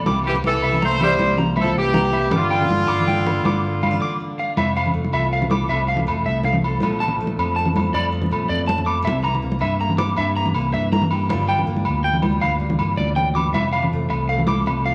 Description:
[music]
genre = highlife guitar band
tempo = 107 BPM (dotted quarters)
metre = 12/8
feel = straight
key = F major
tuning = A4 = 440 Hz
[part]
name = picked steel-string acoustic guitar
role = accompaniment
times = 0.0-14.9 s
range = F2 to C5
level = -32 LUFS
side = equal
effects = none
[part]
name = fingered electric bass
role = bass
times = 0.0-14.9 s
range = F1 to G2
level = -26 LUFS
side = equal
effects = none
[part]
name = electric guitar at the edge of break-up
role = arpeggios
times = 0.1-14.9 s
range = D5 to D6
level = -27 LUFS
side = equal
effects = none
[part]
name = agogo bells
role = percussion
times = 0.1-14.9 s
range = none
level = -29 LUFS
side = equal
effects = none
[part]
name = congas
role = percussion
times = 0.1-14.7 s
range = none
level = -26 LUFS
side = equal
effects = none
[part]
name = brilliant horn section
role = melody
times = 0.3-4.2 s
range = F4 to C5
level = -24 LUFS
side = equal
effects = none
[part]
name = growling tenor saxophone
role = second line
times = 0.3-4.2 s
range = D3 to A3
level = -29 LUFS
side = equal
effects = none
[sound]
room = wet large studio reverb, RT60 1.4 s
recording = vinyl crackle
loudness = -20 LUFS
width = mono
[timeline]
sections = 0.0-4.6 A section; 4.6-14.9 B section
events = break 4.0-4.6; drum fill 12.8-13.5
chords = 0.1 C7; 2.3 Gm7; 4.6 Fmaj7; 6.8 Bbmaj7; 9.1 C7; 11.3 Gm7; 13.5 Fmaj7

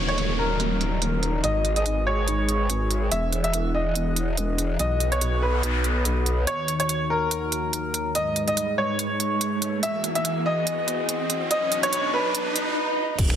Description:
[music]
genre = heavy wobble dubstep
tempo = 143 BPM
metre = 4/4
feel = swing 55% on 16ths, half-time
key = Eb phrygian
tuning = A4 = 439 Hz
[part]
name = lush unison pad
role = sustained chords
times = 0.0-13.4 s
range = Eb2 to F#5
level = -30 LUFS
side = equal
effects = chorus, sidechain pumping
[part]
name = growl bass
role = bass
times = 0.0-6.5, 13.2-13.4 s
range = Eb1 to B1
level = -25 LUFS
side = equal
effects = chorus, overdrive
[part]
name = downlifter, noise sweep, riser, swell and impact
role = sound effects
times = 0.0-13.4 s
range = none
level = -31 LUFS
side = right 1 dB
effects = none
[part]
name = clear baby grand piano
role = melody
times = 0.1-13.1 s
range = Bb4 to E5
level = -26 LUFS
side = equal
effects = digital delay
[part]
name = dubstep drum kit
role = drums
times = 0.1-13.4 s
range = crash cymbal, finger snaps, hi-hat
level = -27 LUFS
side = right 3 dB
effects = high-pass filter on hats, low-pass filter on hats, soft clipping on snare, high-pass filter on snare, low-pass filter on snare, high-pass filter on toms, low-pass filter on toms, high-pass filter on cymbals, low-pass filter on cymbals
[part]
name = electronic kick drum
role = drums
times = 13.2-13.3 s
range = none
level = -20 LUFS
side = equal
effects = none
[sound]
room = moderate lush hall reverb, RT60 2.0 s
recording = dense, heavily limited modern master, high-pass filter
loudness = -22 LUFS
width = side -9 dB against mid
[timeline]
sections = 0.0-6.5 A section; 6.5-13.2 B section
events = filter sweep on analog synth pad 0.0-6.5, 6.5-13.2; noise sweep 5.2-6.5; build-up 6.5-13.2; riser 6.6-12.8; swell 12.3-13.2; impact 13.2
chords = 0.0 Ebm7; 1.4 Abm; 3.1 Eadd9; 4.8 B; 6.5 Ebm7; 8.2 Abm; 9.8 Eadd9; 11.5 B

